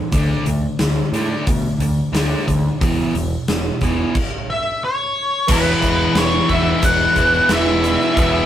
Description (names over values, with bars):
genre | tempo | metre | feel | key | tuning
classic rock | 89 BPM | 4/4 | straight | unclear | A4 = 441 Hz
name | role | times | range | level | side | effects
biting overdriven guitar | riff | 0.0-8.5 s | E2 to D4 | -21 LUFS | equal | none
growling fingered electric bass | bass | 0.1-8.4 s | E1 to B2 | -22 LUFS | equal | overdrive
huge arena drum kit | drums | 0.1-8.3 s | crash cymbal, hi-hat, kick drum, snare drum | -21 LUFS | right 1 dB | none
tube shaker | percussion | 0.1-8.3 s | none | -36 LUFS | right 6 dB | none
octave-fuzz lead guitar | melody | 4.5-8.5 s | B4 to F#5 | -18 LUFS | left 1 dB | distortion
warm grand piano | accompaniment | 5.5-8.4 s | B3 to D5 | -28 LUFS | right 2 dB | none
sludgy distorted guitar | riff | 5.5-8.5 s | E3 to E4 | -21 LUFS | left 1 dB | overdrive
room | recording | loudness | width
moderate studio reverb, RT60 0.6 s | rough rehearsal-room recording | -15 LUFS | side -11 dB against mid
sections
0.0-5.5 A section; 5.5-8.5 B section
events
none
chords
0.1 D5; 2.8 E5; 5.5 E